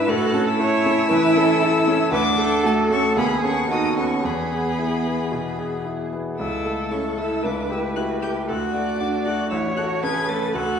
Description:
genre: quick classical-period movement for piano quartet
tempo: 115 BPM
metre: 4/4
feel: rubato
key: A major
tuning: A4 = 439 Hz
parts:
  - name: rich violin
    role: melody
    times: 0.0-10.8 s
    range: A5 to A6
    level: -28 LUFS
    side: left 5 dB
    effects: none
  - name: rich cello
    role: second line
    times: 0.0-10.8 s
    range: A3 to A4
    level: -24 LUFS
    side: right 3 dB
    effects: none
  - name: bright grand piano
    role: accompaniment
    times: 0.0-10.8 s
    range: A1 to B4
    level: -23 LUFS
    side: left 1 dB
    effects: none
  - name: rich viola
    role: accompaniment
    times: 0.0-10.8 s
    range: F#4 to D5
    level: -26 LUFS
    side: right 1 dB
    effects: none
room: wet recital hall reverb, RT60 1.5 s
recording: heard from further back in the room, nothing above 10.5 kHz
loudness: -19 LUFS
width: side -7 dB against mid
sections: 0.0-10.8 A section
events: none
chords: 0.1 A; 2.1 D; 3.2 B7/D#; 4.2 E; 6.4 A/C#; 7.4 A7/C#; 8.5 D; 9.5 A

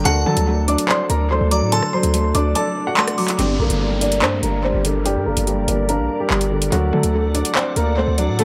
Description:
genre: hip hop, drill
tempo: 144 BPM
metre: 4/4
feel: half-time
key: G harmonic minor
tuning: A4 = 439 Hz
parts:
  - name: clear concert grand piano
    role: melody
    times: 0.0-8.4 s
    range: F#3 to D6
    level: -25 LUFS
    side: equal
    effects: low-pass filter, tape echo
  - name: delicate synth tine bell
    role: second line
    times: 0.0-3.4 s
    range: A5 to D6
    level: -29 LUFS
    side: equal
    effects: chorus, phaser, tape echo
  - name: felt-muted upright piano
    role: accompaniment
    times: 0.0-8.4 s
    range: G2 to D5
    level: -25 LUFS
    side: equal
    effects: low-pass filter, tape echo
  - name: glassy FM pad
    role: sustained chords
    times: 0.0-8.4 s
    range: F#3 to D6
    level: -32 LUFS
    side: equal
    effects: ensemble chorus, built-in reverb, low-pass filter
  - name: hard-hitting 808-style bass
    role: bass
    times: 0.0-8.4 s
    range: F#1 to D3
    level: -23 LUFS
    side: equal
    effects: none
  - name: drill drum kit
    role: drums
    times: 0.1-8.4 s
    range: handclaps, hi-hat, rim click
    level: -26 LUFS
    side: equal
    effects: tape echo
  - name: downlifter and swell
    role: sound effects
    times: 3.4-8.4 s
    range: none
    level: -32 LUFS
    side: equal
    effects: none
room: light reverb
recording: echo-heavy mix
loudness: -19 LUFS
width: mono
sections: 0.0-3.4 A section; 3.4-8.4 B section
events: kick muted 2.6-3.4; filter sweep 3.4-8.4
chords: 0.1 D; 3.4 Gm; 6.7 D

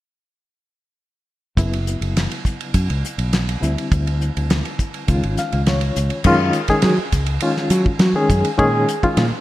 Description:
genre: electric jazz fusion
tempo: 103 BPM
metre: 4/4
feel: straight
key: F# major from 6.3 s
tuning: A4 = 438 Hz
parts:
  - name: barky reed electric piano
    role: accompaniment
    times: 1.6-9.4 s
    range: C#3 to E#5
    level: -21 LUFS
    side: left 1 dB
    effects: fast tremolo
  - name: fretless electric bass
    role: bass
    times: 1.6-9.3 s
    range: F#1 to F#3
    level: -19 LUFS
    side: equal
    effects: none
  - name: damped 70s drum kit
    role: drums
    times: 1.6-9.3 s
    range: crash cymbal, hi-hat, kick drum, ride cymbal, snare drum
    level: -22 LUFS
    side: equal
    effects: gated reverb
room: light reverb, small room reverb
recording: bright 1980s-style digital production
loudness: -16 LUFS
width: side -15 dB against mid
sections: 1.6-6.3 A section; 6.3-9.4 B section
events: reed electric piano fill 5.1-6.3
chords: 1.6 F#7sus4; 3.6 D9sus4; 5.1 C#; 6.3 F#maj7(no3)

